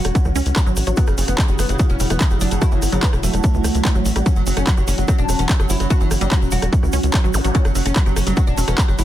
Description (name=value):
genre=psychedelic trance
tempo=146 BPM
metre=4/4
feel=straight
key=F# phrygian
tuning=A4 = 440 Hz
part: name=oud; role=melody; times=0.0-9.0 s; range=C#3 to F#4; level=-27 LUFS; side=equal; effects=phaser, sidechain pumping, dub echo
part: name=evolving wavetable pad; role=sustained chords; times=0.0-9.0 s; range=F#3 to F#4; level=-28 LUFS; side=right 1 dB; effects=ensemble chorus, built-in reverb, phaser, sidechain pumping
part: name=wide unison pluck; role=riff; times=0.0-9.0 s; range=E3 to G4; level=-27 LUFS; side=moving between left 1 dB and right 6 dB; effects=auto-pan, sidechain pumping, dub echo
part: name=tight sequencer bass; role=bass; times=0.0-9.0 s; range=E1 to C#2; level=-20 LUFS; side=equal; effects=none
part: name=techno drum kit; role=drums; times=0.0-9.0 s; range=handclaps, hi-hat, rim click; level=-25 LUFS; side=equal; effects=overdrive
part: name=tube shaker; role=percussion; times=0.0-9.0 s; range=none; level=-33 LUFS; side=right 3 dB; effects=none
part: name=ethereal airy pad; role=texture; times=0.0-9.0 s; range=F#4 to F#5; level=-31 LUFS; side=equal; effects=ensemble chorus, built-in reverb, tremolo, sidechain pumping
part: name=electronic kick drum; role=drums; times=0.1-8.9 s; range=none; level=-18 LUFS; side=equal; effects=overdrive
part: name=zap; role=sound effects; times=7.3-7.4 s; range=none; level=-29 LUFS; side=equal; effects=none
room=little or no reverb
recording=dense, heavily limited modern master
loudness=-15 LUFS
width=side -12 dB against mid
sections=0.0-9.0 A section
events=none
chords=0.0 F#5